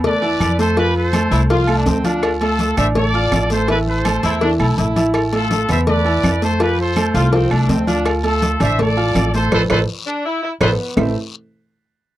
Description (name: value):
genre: latin, salsa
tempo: 165 BPM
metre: 4/4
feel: straight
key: A minor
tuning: A4 = 439 Hz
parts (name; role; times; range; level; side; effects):
- warm upright piano; accompaniment; 0.0-11.1 s; E3 to F6; -20 LUFS; right 1 dB; none
- upright bass; bass; 0.0-11.1 s; A1 to F2; -20 LUFS; equal; none
- congas; percussion; 0.0-11.1 s; none; -24 LUFS; left 2 dB; none
- cowbell and bongos; percussion; 0.0-11.1 s; none; -24 LUFS; left 4 dB; none
- guiro; percussion; 0.0-11.1 s; none; -34 LUFS; left 7 dB; none
- bright trumpet section; melody; 0.1-10.7 s; E4 to E5; -20 LUFS; equal; none
- agogo bells and timbales; percussion; 0.2-11.1 s; none; -26 LUFS; right 4 dB; none
- claves; percussion; 0.4-11.1 s; none; -30 LUFS; right 5 dB; none
- mellow saxophone section; second line; 1.3-11.1 s; B3 to F4; -22 LUFS; left 1 dB; none
room: light reverb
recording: dry, close 1970s-style studio recording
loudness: -14 LUFS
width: side -14 dB against mid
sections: 0.0-11.0 A section; 11.0-12.2 B section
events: drum fill 9.5-11.0; band accent 9.5-11.0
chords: 0.0 Amadd9; 0.8 F; 2.2 Dm; 3.7 Amadd9; 6.6 F; 8.1 Dm; 9.5 Amadd9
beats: 0.04 0.41 | 0.77 1.14 1.50 1.86 | 2.23 2.60 2.96 3.32 | 3.69 4.05 4.42 4.78 | 5.15 5.51 5.88 6.24 | 6.60 6.97 7.33 7.70 | 8.06 8.43 8.79 9.15 | 9.52 9.88 10.24 10.61 | 10.97